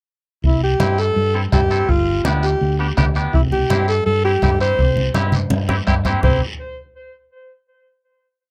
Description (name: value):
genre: latin, cumbia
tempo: 166 BPM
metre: 4/4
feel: straight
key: C major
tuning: A4 = 436 Hz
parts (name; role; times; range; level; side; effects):
- hollow-body short-scale fingered electric bass; bass; 0.4-6.4 s; G1 to G2; -22 LUFS; equal; none
- bombo; percussion; 0.4-6.3 s; none; -24 LUFS; equal; none
- congas; percussion; 0.4-6.3 s; none; -26 LUFS; equal; none
- guiro; percussion; 0.4-6.3 s; none; -35 LUFS; equal; none
- breathy alto saxophone; melody; 0.5-6.4 s; E4 to C5; -23 LUFS; equal; tape echo
- twangy electric guitar; accompaniment; 0.8-6.4 s; B3 to A4; -26 LUFS; equal; none
room: little or no reverb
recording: dry, close 1970s-style studio recording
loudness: -18 LUFS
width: mono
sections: 0.4-6.2 A section; 6.2-7.7 final chord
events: drum fill 5.3-6.2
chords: 0.4 C; 1.9 G7; 3.3 C